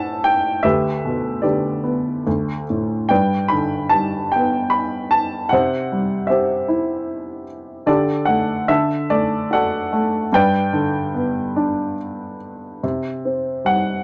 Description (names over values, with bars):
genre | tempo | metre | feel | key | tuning
classical, lyrical solo piano | 70-78 BPM | 3/4 | rubato | G major | A4 = 440 Hz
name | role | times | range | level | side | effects
dark baby grand piano | solo | 0.0-14.0 s | D2 to B5 | -20 LUFS | equal | none
room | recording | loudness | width
light reverb | none | -20 LUFS | mono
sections
0.0-12.8 A section; 12.8-14.0 B section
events
none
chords
0.0 Am; 0.6 G/D; 2.3 D5; 3.1 G; 5.5 C; 7.9 Dsus4; 8.7 D; 10.3 G; 12.8 C5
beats
| 0.64 1.44 2.26 | 3.10 3.94 4.75 | 5.53 6.30 7.08 | 7.88 8.69 9.52 | 10.33 11.14 11.98 | 12.83 13.66